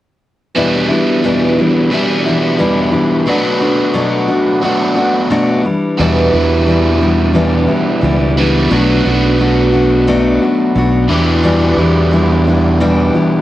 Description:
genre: folk rock and heartland rock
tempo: 88 BPM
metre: 4/4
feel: straight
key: E minor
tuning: A4 = 440 Hz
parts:
  - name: picked steel-string acoustic guitar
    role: accompaniment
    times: 0.5-13.4 s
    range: E2 to F#4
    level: -15 LUFS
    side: left 2 dB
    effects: cassette tape
  - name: overdriven electric guitar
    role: riff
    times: 0.6-13.4 s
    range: E2 to G4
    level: -13 LUFS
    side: right 1 dB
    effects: phaser, cassette tape
  - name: fingered electric bass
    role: bass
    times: 6.0-13.1 s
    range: B1 to E2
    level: -15 LUFS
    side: right 1 dB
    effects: none
room: moderate studio reverb, RT60 0.6 s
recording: home recording on cassette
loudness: -10 LUFS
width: side -14 dB against mid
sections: 0.6-6.0 A section; 6.0-13.4 B section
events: none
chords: 0.6 Em7; 3.3 Bm7; 5.7 Em7; 8.7 Bm7; 11.1 Em7

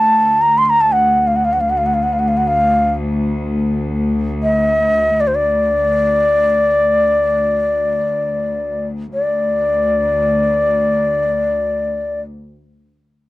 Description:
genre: Arabic maqam ensemble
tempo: free time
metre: none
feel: none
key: D maqam saba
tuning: A4 = 439 Hz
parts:
  - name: breathy mellow ney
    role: melody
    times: 0.0-12.2 s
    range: C5 to C6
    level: -14 LUFS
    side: left 1 dB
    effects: none
  - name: rich studio cello section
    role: drone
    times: 0.0-12.2 s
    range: D2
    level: -21 LUFS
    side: left 1 dB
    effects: none
room: light reverb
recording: dry, close 1970s-style studio recording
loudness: -14 LUFS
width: side -17 dB against mid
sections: 0.0-9.1 A section; 9.1-13.3 B section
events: slowing down 0.0-9.1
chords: none

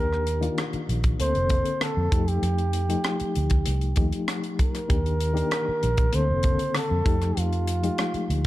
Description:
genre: lush 1970s-style soul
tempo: 97 BPM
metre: 4/4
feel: straight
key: unclear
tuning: A4 = 444 Hz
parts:
  - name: breathy flugelhorn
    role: melody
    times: 0.0-8.5 s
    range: F4 to C5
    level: -29 LUFS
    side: right 2 dB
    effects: none
  - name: reed electric piano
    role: accompaniment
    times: 0.0-8.5 s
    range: Db3 to A4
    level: -29 LUFS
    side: left 4 dB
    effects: fast tremolo
  - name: vintage muted fingered electric bass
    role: bass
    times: 0.0-8.5 s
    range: F1 to F2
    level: -25 LUFS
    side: equal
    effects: none
  - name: tight funk drum kit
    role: drums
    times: 0.1-8.5 s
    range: hi-hat, kick drum, rim click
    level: -26 LUFS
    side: equal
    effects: none
room: light reverb, small room ambience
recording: dark, warm production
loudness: -22 LUFS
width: side -16 dB against mid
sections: 0.0-8.5 A section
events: none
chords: 0.0 Ebmaj7; 1.2 Bbmaj9; 2.1 F9; 4.9 Ebmaj7; 6.1 Bbmaj9; 7.1 F9

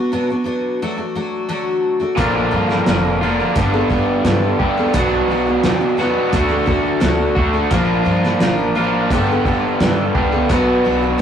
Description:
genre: folk rock and heartland rock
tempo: 87 BPM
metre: 4/4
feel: straight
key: D major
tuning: A4 = 440 Hz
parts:
  - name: picked twelve-string acoustic guitar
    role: accompaniment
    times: 0.0-11.2 s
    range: Bb2 to Bb4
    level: -20 LUFS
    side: left 1 dB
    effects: none
  - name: raw garage guitar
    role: riff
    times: 2.2-11.2 s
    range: G2 to G4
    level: -17 LUFS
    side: right 1 dB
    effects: overdrive
  - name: upright bass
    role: bass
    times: 2.2-11.1 s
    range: F1 to G2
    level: -24 LUFS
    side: equal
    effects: none
  - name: cloth-damped thuddy drum kit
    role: drums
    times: 2.2-10.7 s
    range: hi-hat, kick drum, snare drum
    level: -20 LUFS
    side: equal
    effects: none
room: moderate stone room reverb, RT60 1.2 s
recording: rough rehearsal-room recording, warm saturation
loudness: -14 LUFS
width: side -8 dB against mid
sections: 0.0-11.2 A section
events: none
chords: 0.0 Bm; 0.8 D; 2.2 Bb; 3.6 Gadd9; 4.9 Bm; 6.3 D; 7.7 Bb; 9.1 Gadd9; 10.5 Bm

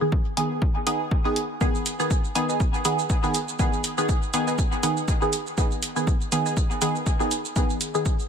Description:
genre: dub techno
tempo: 121 BPM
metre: 4/4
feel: swing 56% on 16ths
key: G# minor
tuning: A4 = 439 Hz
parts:
  - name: filtered dub chord stab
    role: stabs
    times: 0.0-8.1 s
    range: D#3 to G#4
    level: -25 LUFS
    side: right 1 dB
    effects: chorus, phaser, sidechain pumping, dub echo
  - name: electronic kick drum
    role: drums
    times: 0.1-8.2 s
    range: none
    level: -24 LUFS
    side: equal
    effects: none
  - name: electronic hi-hat and shaker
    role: drums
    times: 0.4-8.3 s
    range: none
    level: -30 LUFS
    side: right 3 dB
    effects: none
  - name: filtered dub chord stab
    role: riff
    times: 2.4-6.5 s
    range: B4 to G#5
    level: -37 LUFS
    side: right 4 dB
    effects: chorus, sidechain pumping, dub echo
room: light reverb, digital ambience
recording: none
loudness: -22 LUFS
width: side -7 dB against mid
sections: 0.0-8.3 A section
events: none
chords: 0.0 G#m

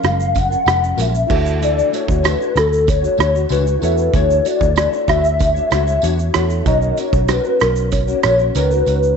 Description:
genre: indie pop, bedroom pop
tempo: 95 BPM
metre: 4/4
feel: straight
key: unclear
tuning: A4 = 442 Hz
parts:
  - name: hollow clarinet-like synth lead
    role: melody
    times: 0.0-9.2 s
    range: A4 to F#5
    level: -17 LUFS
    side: left 2 dB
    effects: ensemble chorus, tape echo
  - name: mellow reed electric piano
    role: accompaniment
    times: 0.0-9.2 s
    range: E#3 to A#5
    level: -27 LUFS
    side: right 14 dB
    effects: fast tremolo
  - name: nylon-string guitar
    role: accompaniment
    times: 0.0-9.2 s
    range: B2 to C#5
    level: -24 LUFS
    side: left 12 dB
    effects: ensemble chorus, warbly pitch drift
  - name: vintage muted picked electric bass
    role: bass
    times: 0.0-9.2 s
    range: E#1 to E2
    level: -19 LUFS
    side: equal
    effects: none
  - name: loose indie drum kit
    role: drums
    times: 0.0-9.2 s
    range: crash cymbal, hi-hat, kick drum, rim click, shaker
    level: -21 LUFS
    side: right 3 dB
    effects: none
  - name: tambourine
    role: percussion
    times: 0.0-9.0 s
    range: none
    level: -38 LUFS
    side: right 15 dB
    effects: none
room: light reverb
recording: 1960s-style stereo with parts hard left and right, nothing above 8.0 kHz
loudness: -14 LUFS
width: side -6 dB against mid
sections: 0.0-9.2 A section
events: none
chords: 0.0 F#maj9; 1.3 Dmaj9; 6.7 Bmaj9

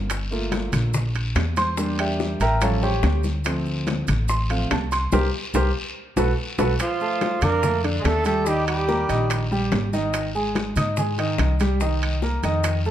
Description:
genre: Afro-Cuban jazz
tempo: 144 BPM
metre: 4/4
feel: straight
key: Bb major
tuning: A4 = 439 Hz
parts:
  - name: warm grand piano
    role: accompaniment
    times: 0.0-12.9 s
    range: D3 to Eb6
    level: -25 LUFS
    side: right 1 dB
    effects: none
  - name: upright bass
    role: bass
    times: 0.0-12.9 s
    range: G1 to Ab2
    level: -24 LUFS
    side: equal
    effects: none
  - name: bongos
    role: percussion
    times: 0.1-12.9 s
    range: none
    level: -32 LUFS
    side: left 7 dB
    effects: none
  - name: congas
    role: percussion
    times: 0.1-12.9 s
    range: none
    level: -30 LUFS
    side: left 2 dB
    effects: none
  - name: guiro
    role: percussion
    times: 0.1-12.9 s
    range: none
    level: -37 LUFS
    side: left 3 dB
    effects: none
  - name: maracas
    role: percussion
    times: 0.1-12.9 s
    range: none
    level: -39 LUFS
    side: right 6 dB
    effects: none
  - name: timbales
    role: percussion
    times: 0.1-12.9 s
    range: none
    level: -31 LUFS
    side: right 6 dB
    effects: none
  - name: dark trumpet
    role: melody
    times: 6.8-9.5 s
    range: F4 to Bb4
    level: -24 LUFS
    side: right 4 dB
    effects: none
  - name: clear tenor saxophone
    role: second line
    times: 6.8-9.5 s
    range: F3 to Bb3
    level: -30 LUFS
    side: left 3 dB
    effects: none
room: light reverb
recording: dark, warm production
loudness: -20 LUFS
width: side -11 dB against mid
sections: 0.0-6.8 A section; 6.8-12.9 B section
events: grand piano solo 0.0-6.8; band accent 5.1-6.8; drum fill 6.2-6.8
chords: 0.1 Gm9; 1.8 Em7b5; 2.6 A7alt; 3.5 Dm7; 5.1 C5; 6.0 B5; 6.8 Bbmaj7; 8.5 Eb; 10.1 Abmaj7; 11.8 Cm7

